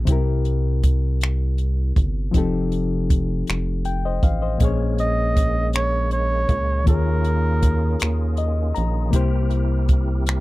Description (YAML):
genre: slow six-eight R&B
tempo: 53 BPM (dotted quarters)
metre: 6/8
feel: straight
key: Bb dorian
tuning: A4 = 440 Hz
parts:
  - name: reed electric piano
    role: accompaniment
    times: 0.0-10.4 s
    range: Bb2 to Bb5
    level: -25 LUFS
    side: left 4 dB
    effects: none
  - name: rubbery square bass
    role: bass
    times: 0.0-10.4 s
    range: F1 to Eb2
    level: -22 LUFS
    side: equal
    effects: none
  - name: compact cocktail drum kit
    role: drums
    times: 0.1-10.4 s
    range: finger snaps, hi-hat, kick drum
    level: -20 LUFS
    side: equal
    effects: none
  - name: percussive tonewheel organ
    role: sustained chords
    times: 4.6-10.4 s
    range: C3 to Bb4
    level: -32 LUFS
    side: right 2 dB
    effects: chorus vibrato, fast rotary speaker
  - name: warm flugelhorn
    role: melody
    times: 5.0-8.3 s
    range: Bb4 to Eb5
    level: -25 LUFS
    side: right 2 dB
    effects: none
room: little or no reverb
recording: dry, close 1970s-style studio recording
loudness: -18 LUFS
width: side -19 dB against mid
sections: 0.0-10.4 A section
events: reed electric piano fill 3.5-4.6, 8.0-9.1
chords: 0.1 C7; 2.3 F9; 4.6 Bbm7; 6.9 Eb7sus4; 9.1 C7